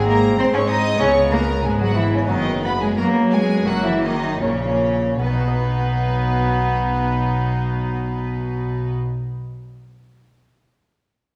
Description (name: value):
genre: classical, baroque-style concerto movement with solo episodes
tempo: 76-99 BPM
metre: 4/4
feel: straight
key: B major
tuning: A4 = 440 Hz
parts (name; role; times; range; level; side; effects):
- rich chamber violin section; melody; 0.0-9.0 s; B4 to D#6; -32 LUFS; equal; none
- warm cello; melody; 0.0-9.0 s; C#3 to D#4; -24 LUFS; equal; none
- rich chamber violin section; second line; 0.0-9.0 s; B3 to D#5; -28 LUFS; equal; none
- lute; accompaniment; 0.0-9.2 s; F#2 to D#5; -31 LUFS; equal; none
- warm chamber viola section; accompaniment; 0.0-9.0 s; A#3 to D#4; -32 LUFS; equal; none
- rich chamber double bass section; bass; 0.0-8.9 s; F#1 to G#2; -26 LUFS; equal; none
- warm chamber cello section; bass; 0.0-8.9 s; F#2 to G#3; -28 LUFS; equal; none
room: wet recital hall reverb, RT60 1.7 s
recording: small room reverb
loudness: -20 LUFS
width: mono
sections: 0.0-5.2 A section; 5.2-8.3 B section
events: slowing down 0.0-5.2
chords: 0.0 G#7; 1.0 C#m7; 2.3 B/F#; 3.7 F#7; 5.2 B